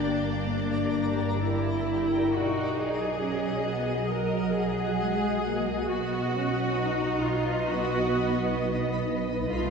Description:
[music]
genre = cinematic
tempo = 67 BPM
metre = 4/4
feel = straight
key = unclear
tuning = A4 = 440 Hz
[part]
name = warm symphonic violin section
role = melody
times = 0.0-9.7 s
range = D5 to D#5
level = -36 LUFS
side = left 2 dB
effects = none
[part]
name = rich symphonic viola section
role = accompaniment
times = 0.0-9.7 s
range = D4 to A#4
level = -29 LUFS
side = equal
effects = none
[part]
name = twinkling granular texture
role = sustained chords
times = 0.0-9.7 s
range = D#4 to C6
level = -33 LUFS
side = left 1 dB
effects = built-in reverb
[part]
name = rich symphonic cello section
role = bass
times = 0.0-9.7 s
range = F#3 to D#4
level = -32 LUFS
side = right 1 dB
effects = none
[part]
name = warm chamber double bass section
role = bass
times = 0.0-9.7 s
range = G1 to C2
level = -32 LUFS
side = right 1 dB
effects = none
[part]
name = clear studio violin section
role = texture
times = 0.0-1.9 s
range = D6 to A6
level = -44 LUFS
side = left 3 dB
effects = none
[part]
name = concert harp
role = texture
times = 0.1-9.7 s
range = F#4 to A5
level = -41 LUFS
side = left 5 dB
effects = none
[sound]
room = wet concert hall reverb, RT60 2.1 s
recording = heard from further back in the room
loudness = -25 LUFS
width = side -5 dB against mid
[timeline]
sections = 0.0-9.7 A section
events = none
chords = 0.0 Gm; 2.3 B

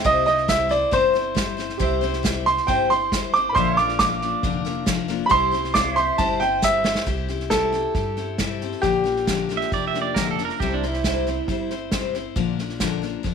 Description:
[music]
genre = honky-tonk and classic country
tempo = 136 BPM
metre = 4/4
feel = straight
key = C mixolydian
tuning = A4 = 439 Hz
[part]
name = bright upright piano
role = melody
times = 0.0-10.3 s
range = G4 to D6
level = -21 LUFS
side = right 2 dB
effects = none
[part]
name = picked steel-string acoustic guitar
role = accompaniment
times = 0.0-13.3 s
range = Bb2 to C5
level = -26 LUFS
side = left 11 dB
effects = none
[part]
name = warm upright piano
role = accompaniment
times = 0.0-7.0 s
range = G4 to F5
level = -34 LUFS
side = right 14 dB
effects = none
[part]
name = pedal steel guitar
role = sustained chords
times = 0.0-7.1 s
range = C5 to F5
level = -31 LUFS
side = right 1 dB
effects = lush chorus
[part]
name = upright bass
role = bass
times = 0.0-13.3 s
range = F1 to G2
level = -32 LUFS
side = right 1 dB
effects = none
[part]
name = unplugged drum kit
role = drums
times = 0.0-13.3 s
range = hi-hat, kick drum, snare drum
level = -27 LUFS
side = right 2 dB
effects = none
[part]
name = pedal steel guitar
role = second line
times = 9.6-11.7 s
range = D4 to E5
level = -26 LUFS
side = right 12 dB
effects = tape echo
[sound]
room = light reverb, small room reverb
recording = 1960s-style stereo with parts hard left and right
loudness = -19 LUFS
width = side -6 dB against mid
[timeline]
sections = 0.0-7.1 A section; 7.1-13.3 B section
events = upright piano solo 0.0-7.1; drum fill 6.6-7.1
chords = 0.0 C; 3.6 Bb; 5.3 C; 8.8 Bb; 10.6 C; 12.4 Bb

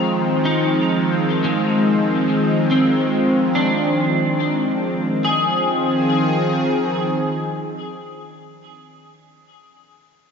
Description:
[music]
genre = ambient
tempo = 71 BPM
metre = 3/4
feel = straight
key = F dorian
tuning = A4 = 443 Hz
[part]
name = warm analog pad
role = sustained chords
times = 0.0-8.6 s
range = Eb3 to Ab4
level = -18 LUFS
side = equal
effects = chorus
[part]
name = electric guitar at the edge of break-up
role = arpeggios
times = 0.0-9.2 s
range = Ab3 to Bb5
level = -21 LUFS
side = left 2 dB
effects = analog chorus, ping-pong delay
[sound]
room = wet lush hall reverb, RT60 2.7 s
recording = dreamy mix soaked in reverb, nothing above 7.5 kHz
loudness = -16 LUFS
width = side -6 dB against mid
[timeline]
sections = 0.0-5.2 A section; 5.2-7.8 B section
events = none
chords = 0.0 Fm7

